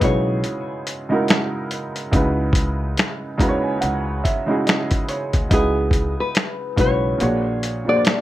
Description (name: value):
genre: lo-fi hip hop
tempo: 71 BPM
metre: 4/4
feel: swing 58% on 16ths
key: C# dorian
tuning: A4 = 440 Hz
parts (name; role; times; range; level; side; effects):
- nylon-string guitar; melody; 0.0-8.2 s; G#4 to D5; -23 LUFS; left 2 dB; low-pass filter, analog delay
- dark upright piano; accompaniment; 0.0-8.2 s; A#2 to A#5; -22 LUFS; right 2 dB; cassette tape, low-pass filter
- upright bass; bass; 0.0-8.0 s; A#1 to D#2; -25 LUFS; equal; none
- dusty soul sampler-style drum kit; drums; 0.0-8.2 s; finger snaps, hi-hat, kick drum, snare drum; -19 LUFS; equal; none
room: moderate small room reverb, RT60 0.6 s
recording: none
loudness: -18 LUFS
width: side -14 dB against mid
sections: 0.0-5.5 A section; 5.5-8.2 A section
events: upright piano fill 3.0-5.5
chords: 0.0 C#m11; 7.2 A#7alt